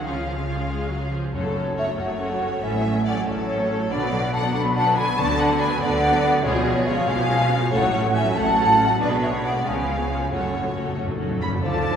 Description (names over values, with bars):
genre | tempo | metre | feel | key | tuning
classical, dramatic, fast romantic movement for symphony orchestra | 94 BPM (dotted quarters) | 6/8 | straight | F# minor | A4 = 440 Hz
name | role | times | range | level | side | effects
rich symphonic violin section | melody | 0.0-12.0 s | E#4 to B5 | -33 LUFS | left 3 dB | none
rich symphonic violin section | second line | 0.0-12.0 s | E#4 to A5 | -29 LUFS | left 2 dB | none
rich symphonic viola section | accompaniment | 0.0-12.0 s | D3 to E#4 | -29 LUFS | right 1 dB | none
concert harp | arpeggios | 0.0-12.0 s | F#2 to D5 | -31 LUFS | left 4 dB | none
clear symphonic double bass section | bass | 0.0-12.0 s | F#1 to D2 | -29 LUFS | right 1 dB | none
rich symphonic cello section | bass | 0.0-12.0 s | F#2 to D3 | -27 LUFS | right 3 dB | none
mellow large flute ensemble | second line | 1.3-12.0 s | C#5 to D6 | -23 LUFS | equal | none
timpani | percussion | 1.3-1.9, 10.3-11.6 s | F#2 | -30 LUFS | left 1 dB | none
mellow clarinet | second line | 11.6-12.0 s | A4 | -31 LUFS | right 1 dB | none
mellow bassoon | accompaniment | 11.6-12.0 s | F3 | -28 LUFS | right 3 dB | none
room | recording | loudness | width
wet scoring stage reverb, RT60 2.1 s | recorded in a church or concert hall | -19 LUFS | side -8 dB against mid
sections
0.0-1.3 A section; 1.3-11.6 B section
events
timpani fill 10.3-11.6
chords
0.0 C#; 1.3 F#m; 2.6 F#m/A; 3.9 Bm; 5.2 Bm/D; 6.5 C#7/B; 7.7 F#m/A; 9.0 G#dim/B; 9.7 C#7; 10.3 F#m